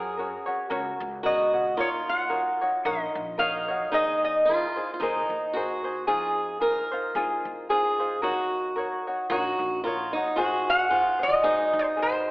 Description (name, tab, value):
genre	Hawaiian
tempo	112 BPM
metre	4/4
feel	swing 56% on 8ths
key	unclear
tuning	A4 = 439 Hz
part	lap resonator guitar	melody	0.0-5.3, 10.7-12.3 s	Bb4 to Gb5	-24 LUFS	equal	none
part	fingerpicked swing-style acoustic guitar	second line	0.0-12.3 s	Eb4 to Bb4	-28 LUFS	right 1 dB	none
part	ukulele	accompaniment	0.0-12.3 s	Db4 to Db5	-29 LUFS	left 1 dB	none
part	upright bass	bass	0.0-12.3 s	Ab1 to Gb2	-44 LUFS	equal	none
room	wet scoring stage reverb, RT60 1.7 s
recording	telephone sound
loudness	-23 LUFS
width	side -22 dB against mid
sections	0.0-12.3 A section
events	none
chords	0.0 Gb; 1.8 Ebm7; 3.9 Abadd9/Eb; 6.1 Fm7; 8.2 Ebm7; 10.4 Ab7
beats	0.17 0.70 1.24 | 1.78 2.31 2.85 3.39 | 3.92 4.46 5.00 5.53 | 6.07 6.61 7.14 7.68 | 8.22 8.75 9.29 9.83 | 10.37 10.90 11.44 11.98